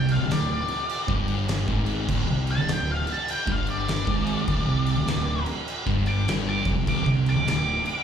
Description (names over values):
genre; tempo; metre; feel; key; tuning
stoner and doom metal; 100 BPM; 4/4; swing 63% on 8ths; unclear; A4 = 442 Hz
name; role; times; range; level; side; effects
octave-fuzz lead guitar; melody; 0.0-8.0 s; D5 to D6; -29 LUFS; left 1 dB; distortion, slapback echo, ping-pong delay
thick fuzz guitar; riff; 0.0-7.8 s; D2 to C3; -29 LUFS; left 8 dB; distortion
thick fuzz guitar; riff; 0.0-7.8 s; D2 to C3; -27 LUFS; right 7 dB; distortion
fuzz fingered electric bass; bass; 0.0-7.8 s; D1 to C2; -30 LUFS; equal; overdrive
oversized low-tuned drum kit; drums; 0.1-8.0 s; crash cymbal, kick drum, snare drum; -29 LUFS; equal; none
room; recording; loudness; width
small room ambience; live gig heard through the venue's PA, club reverb; -22 LUFS; side -8 dB against mid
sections
0.0-8.0 A section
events
lead electric guitar solo 0.0-8.0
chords
none